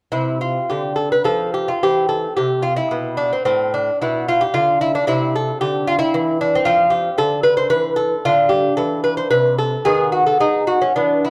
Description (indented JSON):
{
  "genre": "classical, baroque-style dance for lute",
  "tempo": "104-115 BPM",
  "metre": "3/4",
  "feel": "rubato",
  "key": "C major",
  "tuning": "A4 = 435 Hz",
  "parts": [
    { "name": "lute", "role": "solo", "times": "0.1-11.3 s", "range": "A2 to C5", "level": "-18 LUFS", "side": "equal", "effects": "none" }
  ],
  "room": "moderate recital hall reverb, RT60 1.5 s",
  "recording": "dark, warm production",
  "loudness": "-18 LUFS",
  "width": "mono",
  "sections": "0.1-11.3 A section",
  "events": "none",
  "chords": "0.1 Fmaj13/C; 1.8 C; 3.4 Amadd9; 5.1 C69; 6.7 F5; 8.3 Cmaj13; 9.9 B/D#"
}